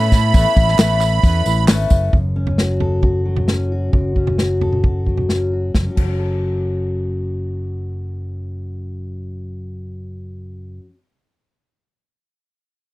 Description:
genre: indie folk with a building arrangement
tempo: 132 BPM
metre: 4/4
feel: straight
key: F# minor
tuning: A4 = 440 Hz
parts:
  - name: musette accordion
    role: melody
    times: 0.0-1.6 s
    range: B5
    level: -20 LUFS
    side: right 10 dB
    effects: none
  - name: picked swing-style acoustic guitar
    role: accompaniment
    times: 0.0-2.1 s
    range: A3 to B4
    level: -20 LUFS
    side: left 4 dB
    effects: none
  - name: warm studio string section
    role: sustained chords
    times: 0.0-2.1 s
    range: B3 to C#5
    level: -32 LUFS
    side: equal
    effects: none
  - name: fingered electric bass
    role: bass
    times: 0.0-10.8 s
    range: F#1 to A2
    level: -20 LUFS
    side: equal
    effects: none
  - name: natural country drum kit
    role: drums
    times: 0.1-6.1 s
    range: crash cymbal, hi-hat, kick drum, snare drum, toms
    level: -16 LUFS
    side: equal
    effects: none
  - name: tambourine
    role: percussion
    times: 0.1-2.0 s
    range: none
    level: -35 LUFS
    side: right 7 dB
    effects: none
  - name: group handclap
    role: percussion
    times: 0.8-1.8 s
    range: none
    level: -27 LUFS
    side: right 7 dB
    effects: none
  - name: fingerpicked steel-string acoustic guitar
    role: accompaniment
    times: 2.1-11.0 s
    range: F#2 to A4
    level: -25 LUFS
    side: left 2 dB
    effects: none
room: little or no reverb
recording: dry, close 1970s-style studio recording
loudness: -15 LUFS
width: side -18 dB against mid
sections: 0.0-2.1 A section; 2.1-5.7 B section; 5.7-9.4 C section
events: none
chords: 0.0 Aadd9; 2.1 F#m

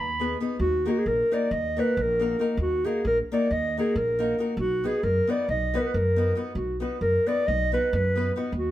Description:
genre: balkan folk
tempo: 272 BPM (eighths)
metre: 9/8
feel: straight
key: unclear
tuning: A4 = 439 Hz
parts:
  - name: dark clarinet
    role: melody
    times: 0.0-8.7 s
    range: Gb4 to Cb6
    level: -25 LUFS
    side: equal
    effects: none
  - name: upright bass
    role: bass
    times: 0.0-8.7 s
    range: Bb1 to F#2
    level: -29 LUFS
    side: equal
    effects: none
  - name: nylon-string guitar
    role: accompaniment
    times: 0.2-8.5 s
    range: Bb3 to Cb5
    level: -30 LUFS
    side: left 2 dB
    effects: none
room: wet stone room reverb, RT60 1.0 s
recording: band playing live in one room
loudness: -23 LUFS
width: side -13 dB against mid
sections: 0.6-8.7 A section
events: none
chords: 0.0 Abm; 0.6 Ebm; 4.6 B

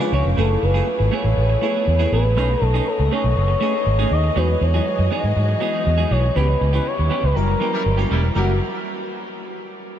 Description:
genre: pop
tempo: 120 BPM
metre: 4/4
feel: straight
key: F# minor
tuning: A4 = 441 Hz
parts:
  - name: expressive synth lead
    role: melody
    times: 0.0-8.6 s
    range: E#4 to D#5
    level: -23 LUFS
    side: left 2 dB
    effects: chorus, analog delay
  - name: FM electric piano with soft pad layer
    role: accompaniment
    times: 0.0-8.6 s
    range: F#3 to D#5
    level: -28 LUFS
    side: left 3 dB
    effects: ensemble chorus
  - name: muted studio string section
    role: sustained chords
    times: 0.0-8.6 s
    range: C#3 to D6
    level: -32 LUFS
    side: equal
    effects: none
  - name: clean electric guitar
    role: riff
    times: 0.0-8.5 s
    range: E3 to G#4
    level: -27 LUFS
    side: right 6 dB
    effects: lush chorus
  - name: vintage muted fingered electric bass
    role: bass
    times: 0.1-8.6 s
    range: E1 to G#2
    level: -18 LUFS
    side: equal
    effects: none
  - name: warm horn section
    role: second line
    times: 7.7-8.5 s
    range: G3 to A#4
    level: -34 LUFS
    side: equal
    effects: analog delay
room: moderate huge ambient reverb, RT60 7.5 s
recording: dreamy mix soaked in reverb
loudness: -17 LUFS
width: side -10 dB against mid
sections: 0.4-8.4 A section; 8.4-10.0 B section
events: band accent 6.4-8.4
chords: 0.4 F#m11; 2.4 B13; 4.4 Emaj9; 6.4 C#m7b5; 7.4 F#7b9

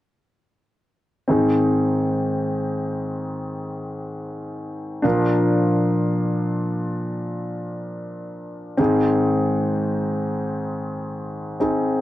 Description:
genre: pop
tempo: free time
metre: none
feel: none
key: Ab lydian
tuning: A4 = 444 Hz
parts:
  - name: warm concert grand piano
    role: accompaniment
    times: 1.3-12.0 s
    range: Ab2 to Bb4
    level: -20 LUFS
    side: equal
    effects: cassette tape
room: wet booth ambience, RT60 0.2 s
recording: home recording on cassette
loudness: -20 LUFS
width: side -15 dB against mid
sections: 1.3-12.0 A section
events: none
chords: 1.3 Ab; 5.0 Bb; 8.8 Ab

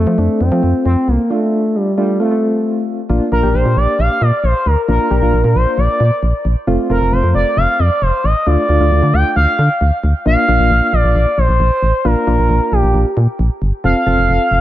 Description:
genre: synth-pop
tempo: 134 BPM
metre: 4/4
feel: straight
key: Bb major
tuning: A4 = 439 Hz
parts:
  - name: expressive synth lead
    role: melody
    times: 0.0-14.6 s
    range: G3 to G5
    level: -16 LUFS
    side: equal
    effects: chorus, digital delay
  - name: soft electric-piano-like synth keys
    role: accompaniment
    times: 0.0-14.6 s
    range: A3 to A4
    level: -19 LUFS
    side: left 1 dB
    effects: chorus, tremolo
  - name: solid FM bass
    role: bass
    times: 0.0-14.6 s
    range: F1 to F3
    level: -14 LUFS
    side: equal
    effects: none
room: light reverb, digital ambience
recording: none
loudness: -12 LUFS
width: side -14 dB against mid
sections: 0.0-3.1 A section; 3.1-10.3 B section; 10.3-14.6 C section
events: stop 1.3-3.1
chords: 0.0 F; 1.3 Dm; 2.2 F; 3.1 Bb; 6.7 F; 8.5 Dm; 10.3 Bbadd9; 13.8 F

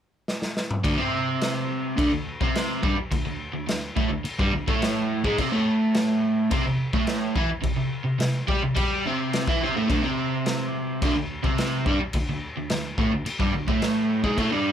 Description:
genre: garage rock duo or trio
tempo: 106 BPM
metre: 4/4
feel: straight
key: unclear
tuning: A4 = 440 Hz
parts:
  - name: raw garage drum kit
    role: drums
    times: 0.3-14.5 s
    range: crash cymbal, kick drum, snare drum, toms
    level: -27 LUFS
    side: left 1 dB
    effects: none
  - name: crunchy overdriven guitar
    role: riff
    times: 0.8-14.7 s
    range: D2 to G4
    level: -24 LUFS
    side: right 1 dB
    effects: none
room: moderate studio reverb, RT60 0.5 s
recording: none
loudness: -22 LUFS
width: side -9 dB against mid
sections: 0.8-14.7 A section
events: drum fill 0.3-0.8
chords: 0.0 N.C.; 0.8 D5; 5.4 C5; 9.9 D5

